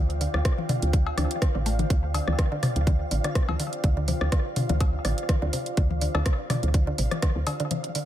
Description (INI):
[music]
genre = minimal techno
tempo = 124 BPM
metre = 4/4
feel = swing 54% on 16ths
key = D minor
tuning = A4 = 440 Hz
[part]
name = woody FM bass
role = bass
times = 0.0-7.4 s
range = A1 to D2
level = -26 LUFS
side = equal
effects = sidechain pumping
[part]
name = deep dark ambient pad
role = texture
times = 0.0-8.1 s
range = F4 to G5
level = -35 LUFS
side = right 1 dB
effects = chorus, built-in reverb, sidechain pumping
[part]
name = flickering grainy texture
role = texture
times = 0.0-8.1 s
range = F5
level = -38 LUFS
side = right 1 dB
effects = built-in reverb, sidechain pumping
[part]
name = garage drum kit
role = drums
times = 0.1-8.1 s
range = hi-hat, rim click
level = -33 LUFS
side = right 2 dB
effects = overdrive
[part]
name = mallet-like synth pluck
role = riff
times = 0.2-8.0 s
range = C3 to D4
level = -32 LUFS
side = equal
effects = chorus, sidechain pumping, dub echo
[part]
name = booming analog drum machine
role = percussion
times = 0.3-7.8 s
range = cowbell, rim click, toms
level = -31 LUFS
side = left 4 dB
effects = analog delay
[part]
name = electronic kick drum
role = drums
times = 0.5-7.3 s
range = none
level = -23 LUFS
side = equal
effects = overdrive
[sound]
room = light reverb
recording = echo-heavy mix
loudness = -23 LUFS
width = side -12 dB against mid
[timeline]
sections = 0.0-8.1 A section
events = none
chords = 0.0 Dm7